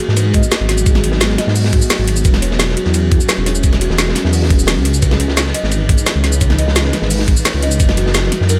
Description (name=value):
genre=liquid drum and bass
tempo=173 BPM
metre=4/4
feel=straight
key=unclear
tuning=A4 = 440 Hz
part: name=ethereal airy pad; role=sustained chords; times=0.0-8.6 s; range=E3 to B4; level=-26 LUFS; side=equal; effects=ensemble chorus, built-in reverb, sidechain pumping
part: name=crunchy breakbeat drum kit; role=drums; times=0.0-8.6 s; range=hi-hat, ride cymbal, snare drum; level=-25 LUFS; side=equal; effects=high-pass filter on cymbals, small room ambience, high-pass filter on hats, high-pass filter on snare, high-pass filter on room
part: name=garage drum kit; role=drums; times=0.0-8.6 s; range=hi-hat, shaker, snare drum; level=-21 LUFS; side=equal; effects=overdrive, small room ambience
part: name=dark detuned saw bass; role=bass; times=0.1-8.6 s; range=E1 to G#2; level=-18 LUFS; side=equal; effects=none
part: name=kalimba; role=arpeggios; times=0.2-8.6 s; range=F#4 to D#5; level=-26 LUFS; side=equal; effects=tape echo
part: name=electronic kick drum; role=drums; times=0.3-7.9 s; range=none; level=-16 LUFS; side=equal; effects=small room ambience
room=small room reverb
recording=none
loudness=-14 LUFS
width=mono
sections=0.0-8.6 A section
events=none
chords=0.0 G#m7; 2.2 E69; 4.9 C#m9; 7.8 F#9